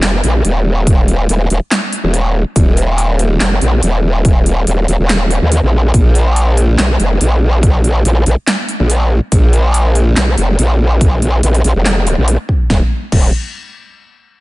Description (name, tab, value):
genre	heavy wobble dubstep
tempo	142 BPM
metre	4/4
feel	half-time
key	unclear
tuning	A4 = 440 Hz
part	growl bass	bass	0.0-13.3 s	Eb1 to Eb2	-11 LUFS	equal	chorus, overdrive
part	big-room dance drum kit	drums	0.0-13.2 s	crash cymbal, handclaps, hi-hat, snare drum	-18 LUFS	equal	overdrive
part	electronic kick drum	drums	0.9-13.2 s	none	-11 LUFS	equal	none
room	digital ambience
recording	nothing above 10.9 kHz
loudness	-10 LUFS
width	side -20 dB against mid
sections	0.0-12.7 A section; 12.7-14.4 B section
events	drop 0.0-12.7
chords	none